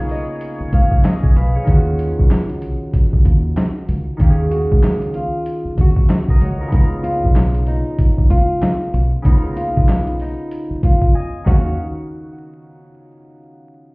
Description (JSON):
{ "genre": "hip hop, boom-bap hip-hop", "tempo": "95 BPM", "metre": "4/4", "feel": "swing 60% on 16ths", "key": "Eb minor", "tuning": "A4 = 440 Hz", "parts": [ { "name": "nylon-string guitar", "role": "melody", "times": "0.0-11.8 s", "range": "Eb4 to F5", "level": "-24 LUFS", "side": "left 1 dB", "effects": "high-pass filter, low-pass filter, ping-pong delay" }, { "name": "concert harp", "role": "accompaniment", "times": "0.0-11.8 s", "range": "Db3 to Ab5", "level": "-24 LUFS", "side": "equal", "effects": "cassette tape, high-pass filter, low-pass filter" }, { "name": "clear horn section", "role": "stabs", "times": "0.0-1.3 s", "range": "Bb3 to Db5", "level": "-34 LUFS", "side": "left 1 dB", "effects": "high-pass filter, low-pass filter, ping-pong delay" }, { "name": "deep dub fingered electric bass", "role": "bass", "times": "0.0-11.8 s", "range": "Cb2 to Eb2", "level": "-18 LUFS", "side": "equal", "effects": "none" }, { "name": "dusty soul sampler-style drum kit", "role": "drums", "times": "0.1-11.6 s", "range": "handclaps, hi-hat, kick drum, snare drum", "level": "-14 LUFS", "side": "equal", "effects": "none" } ], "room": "light reverb", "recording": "heard muffled through a wall, stone room reverb, vinyl crackle, EQ", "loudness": "-14 LUFS", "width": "side -29 dB against mid", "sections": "0.0-1.7 A section; 1.7-11.8 B section; 11.8-13.9 C section", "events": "silent gap 11.1-11.8", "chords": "0.0 Db13; 1.7 Ebm9; 6.7 Db13; 11.5 Ebm9; 11.8 N.C." }